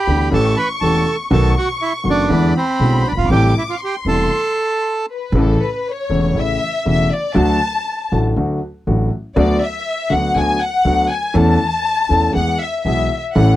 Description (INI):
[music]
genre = tango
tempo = 120 BPM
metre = 4/4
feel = rubato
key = A minor, A major from 5.3 s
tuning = A4 = 440 Hz
[part]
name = bandoneon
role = melody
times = 0.0-5.1 s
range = C4 to B5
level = -18 LUFS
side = right 3 dB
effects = none
[part]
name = warm studio violin section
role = second line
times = 0.0-13.6 s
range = A4 to D6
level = -20 LUFS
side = left 3 dB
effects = none
[part]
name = warm concert grand piano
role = accompaniment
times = 0.1-13.6 s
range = E1 to A4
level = -17 LUFS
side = left 1 dB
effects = none
[part]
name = upright bass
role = bass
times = 0.1-13.6 s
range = E1 to E2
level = -18 LUFS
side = right 1 dB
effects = none
[sound]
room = light reverb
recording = dry, close 1970s-style studio recording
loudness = -14 LUFS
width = side -14 dB against mid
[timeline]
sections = 0.0-5.3 A section; 5.3-13.6 B section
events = stop 4.8-5.3; violin section solo 5.3-13.6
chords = 0.3 A7; 1.3 B7; 2.3 E7; 3.3 Am7; 5.3 A; 7.4 D; 9.4 Bm/D; 11.3 A/E; 12.3 E